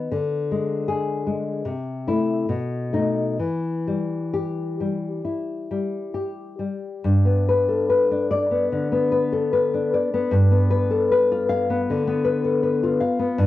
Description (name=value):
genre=romantic piece for solo classical guitar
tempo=63-81 BPM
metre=4/4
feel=rubato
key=E minor, G major from 7.0 s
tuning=A4 = 440 Hz
part: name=nylon-string guitar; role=solo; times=0.0-13.5 s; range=G2 to F5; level=-20 LUFS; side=left 2 dB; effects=cassette tape
room=moderate studio ambience, RT60 0.5 s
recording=home recording on cassette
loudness=-20 LUFS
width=side -14 dB against mid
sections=0.0-7.0 A section; 7.0-13.5 B section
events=none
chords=0.1 N.C.; 1.7 Am/C; 2.5 B7; 3.4 Em; 7.0 G; 10.3 G7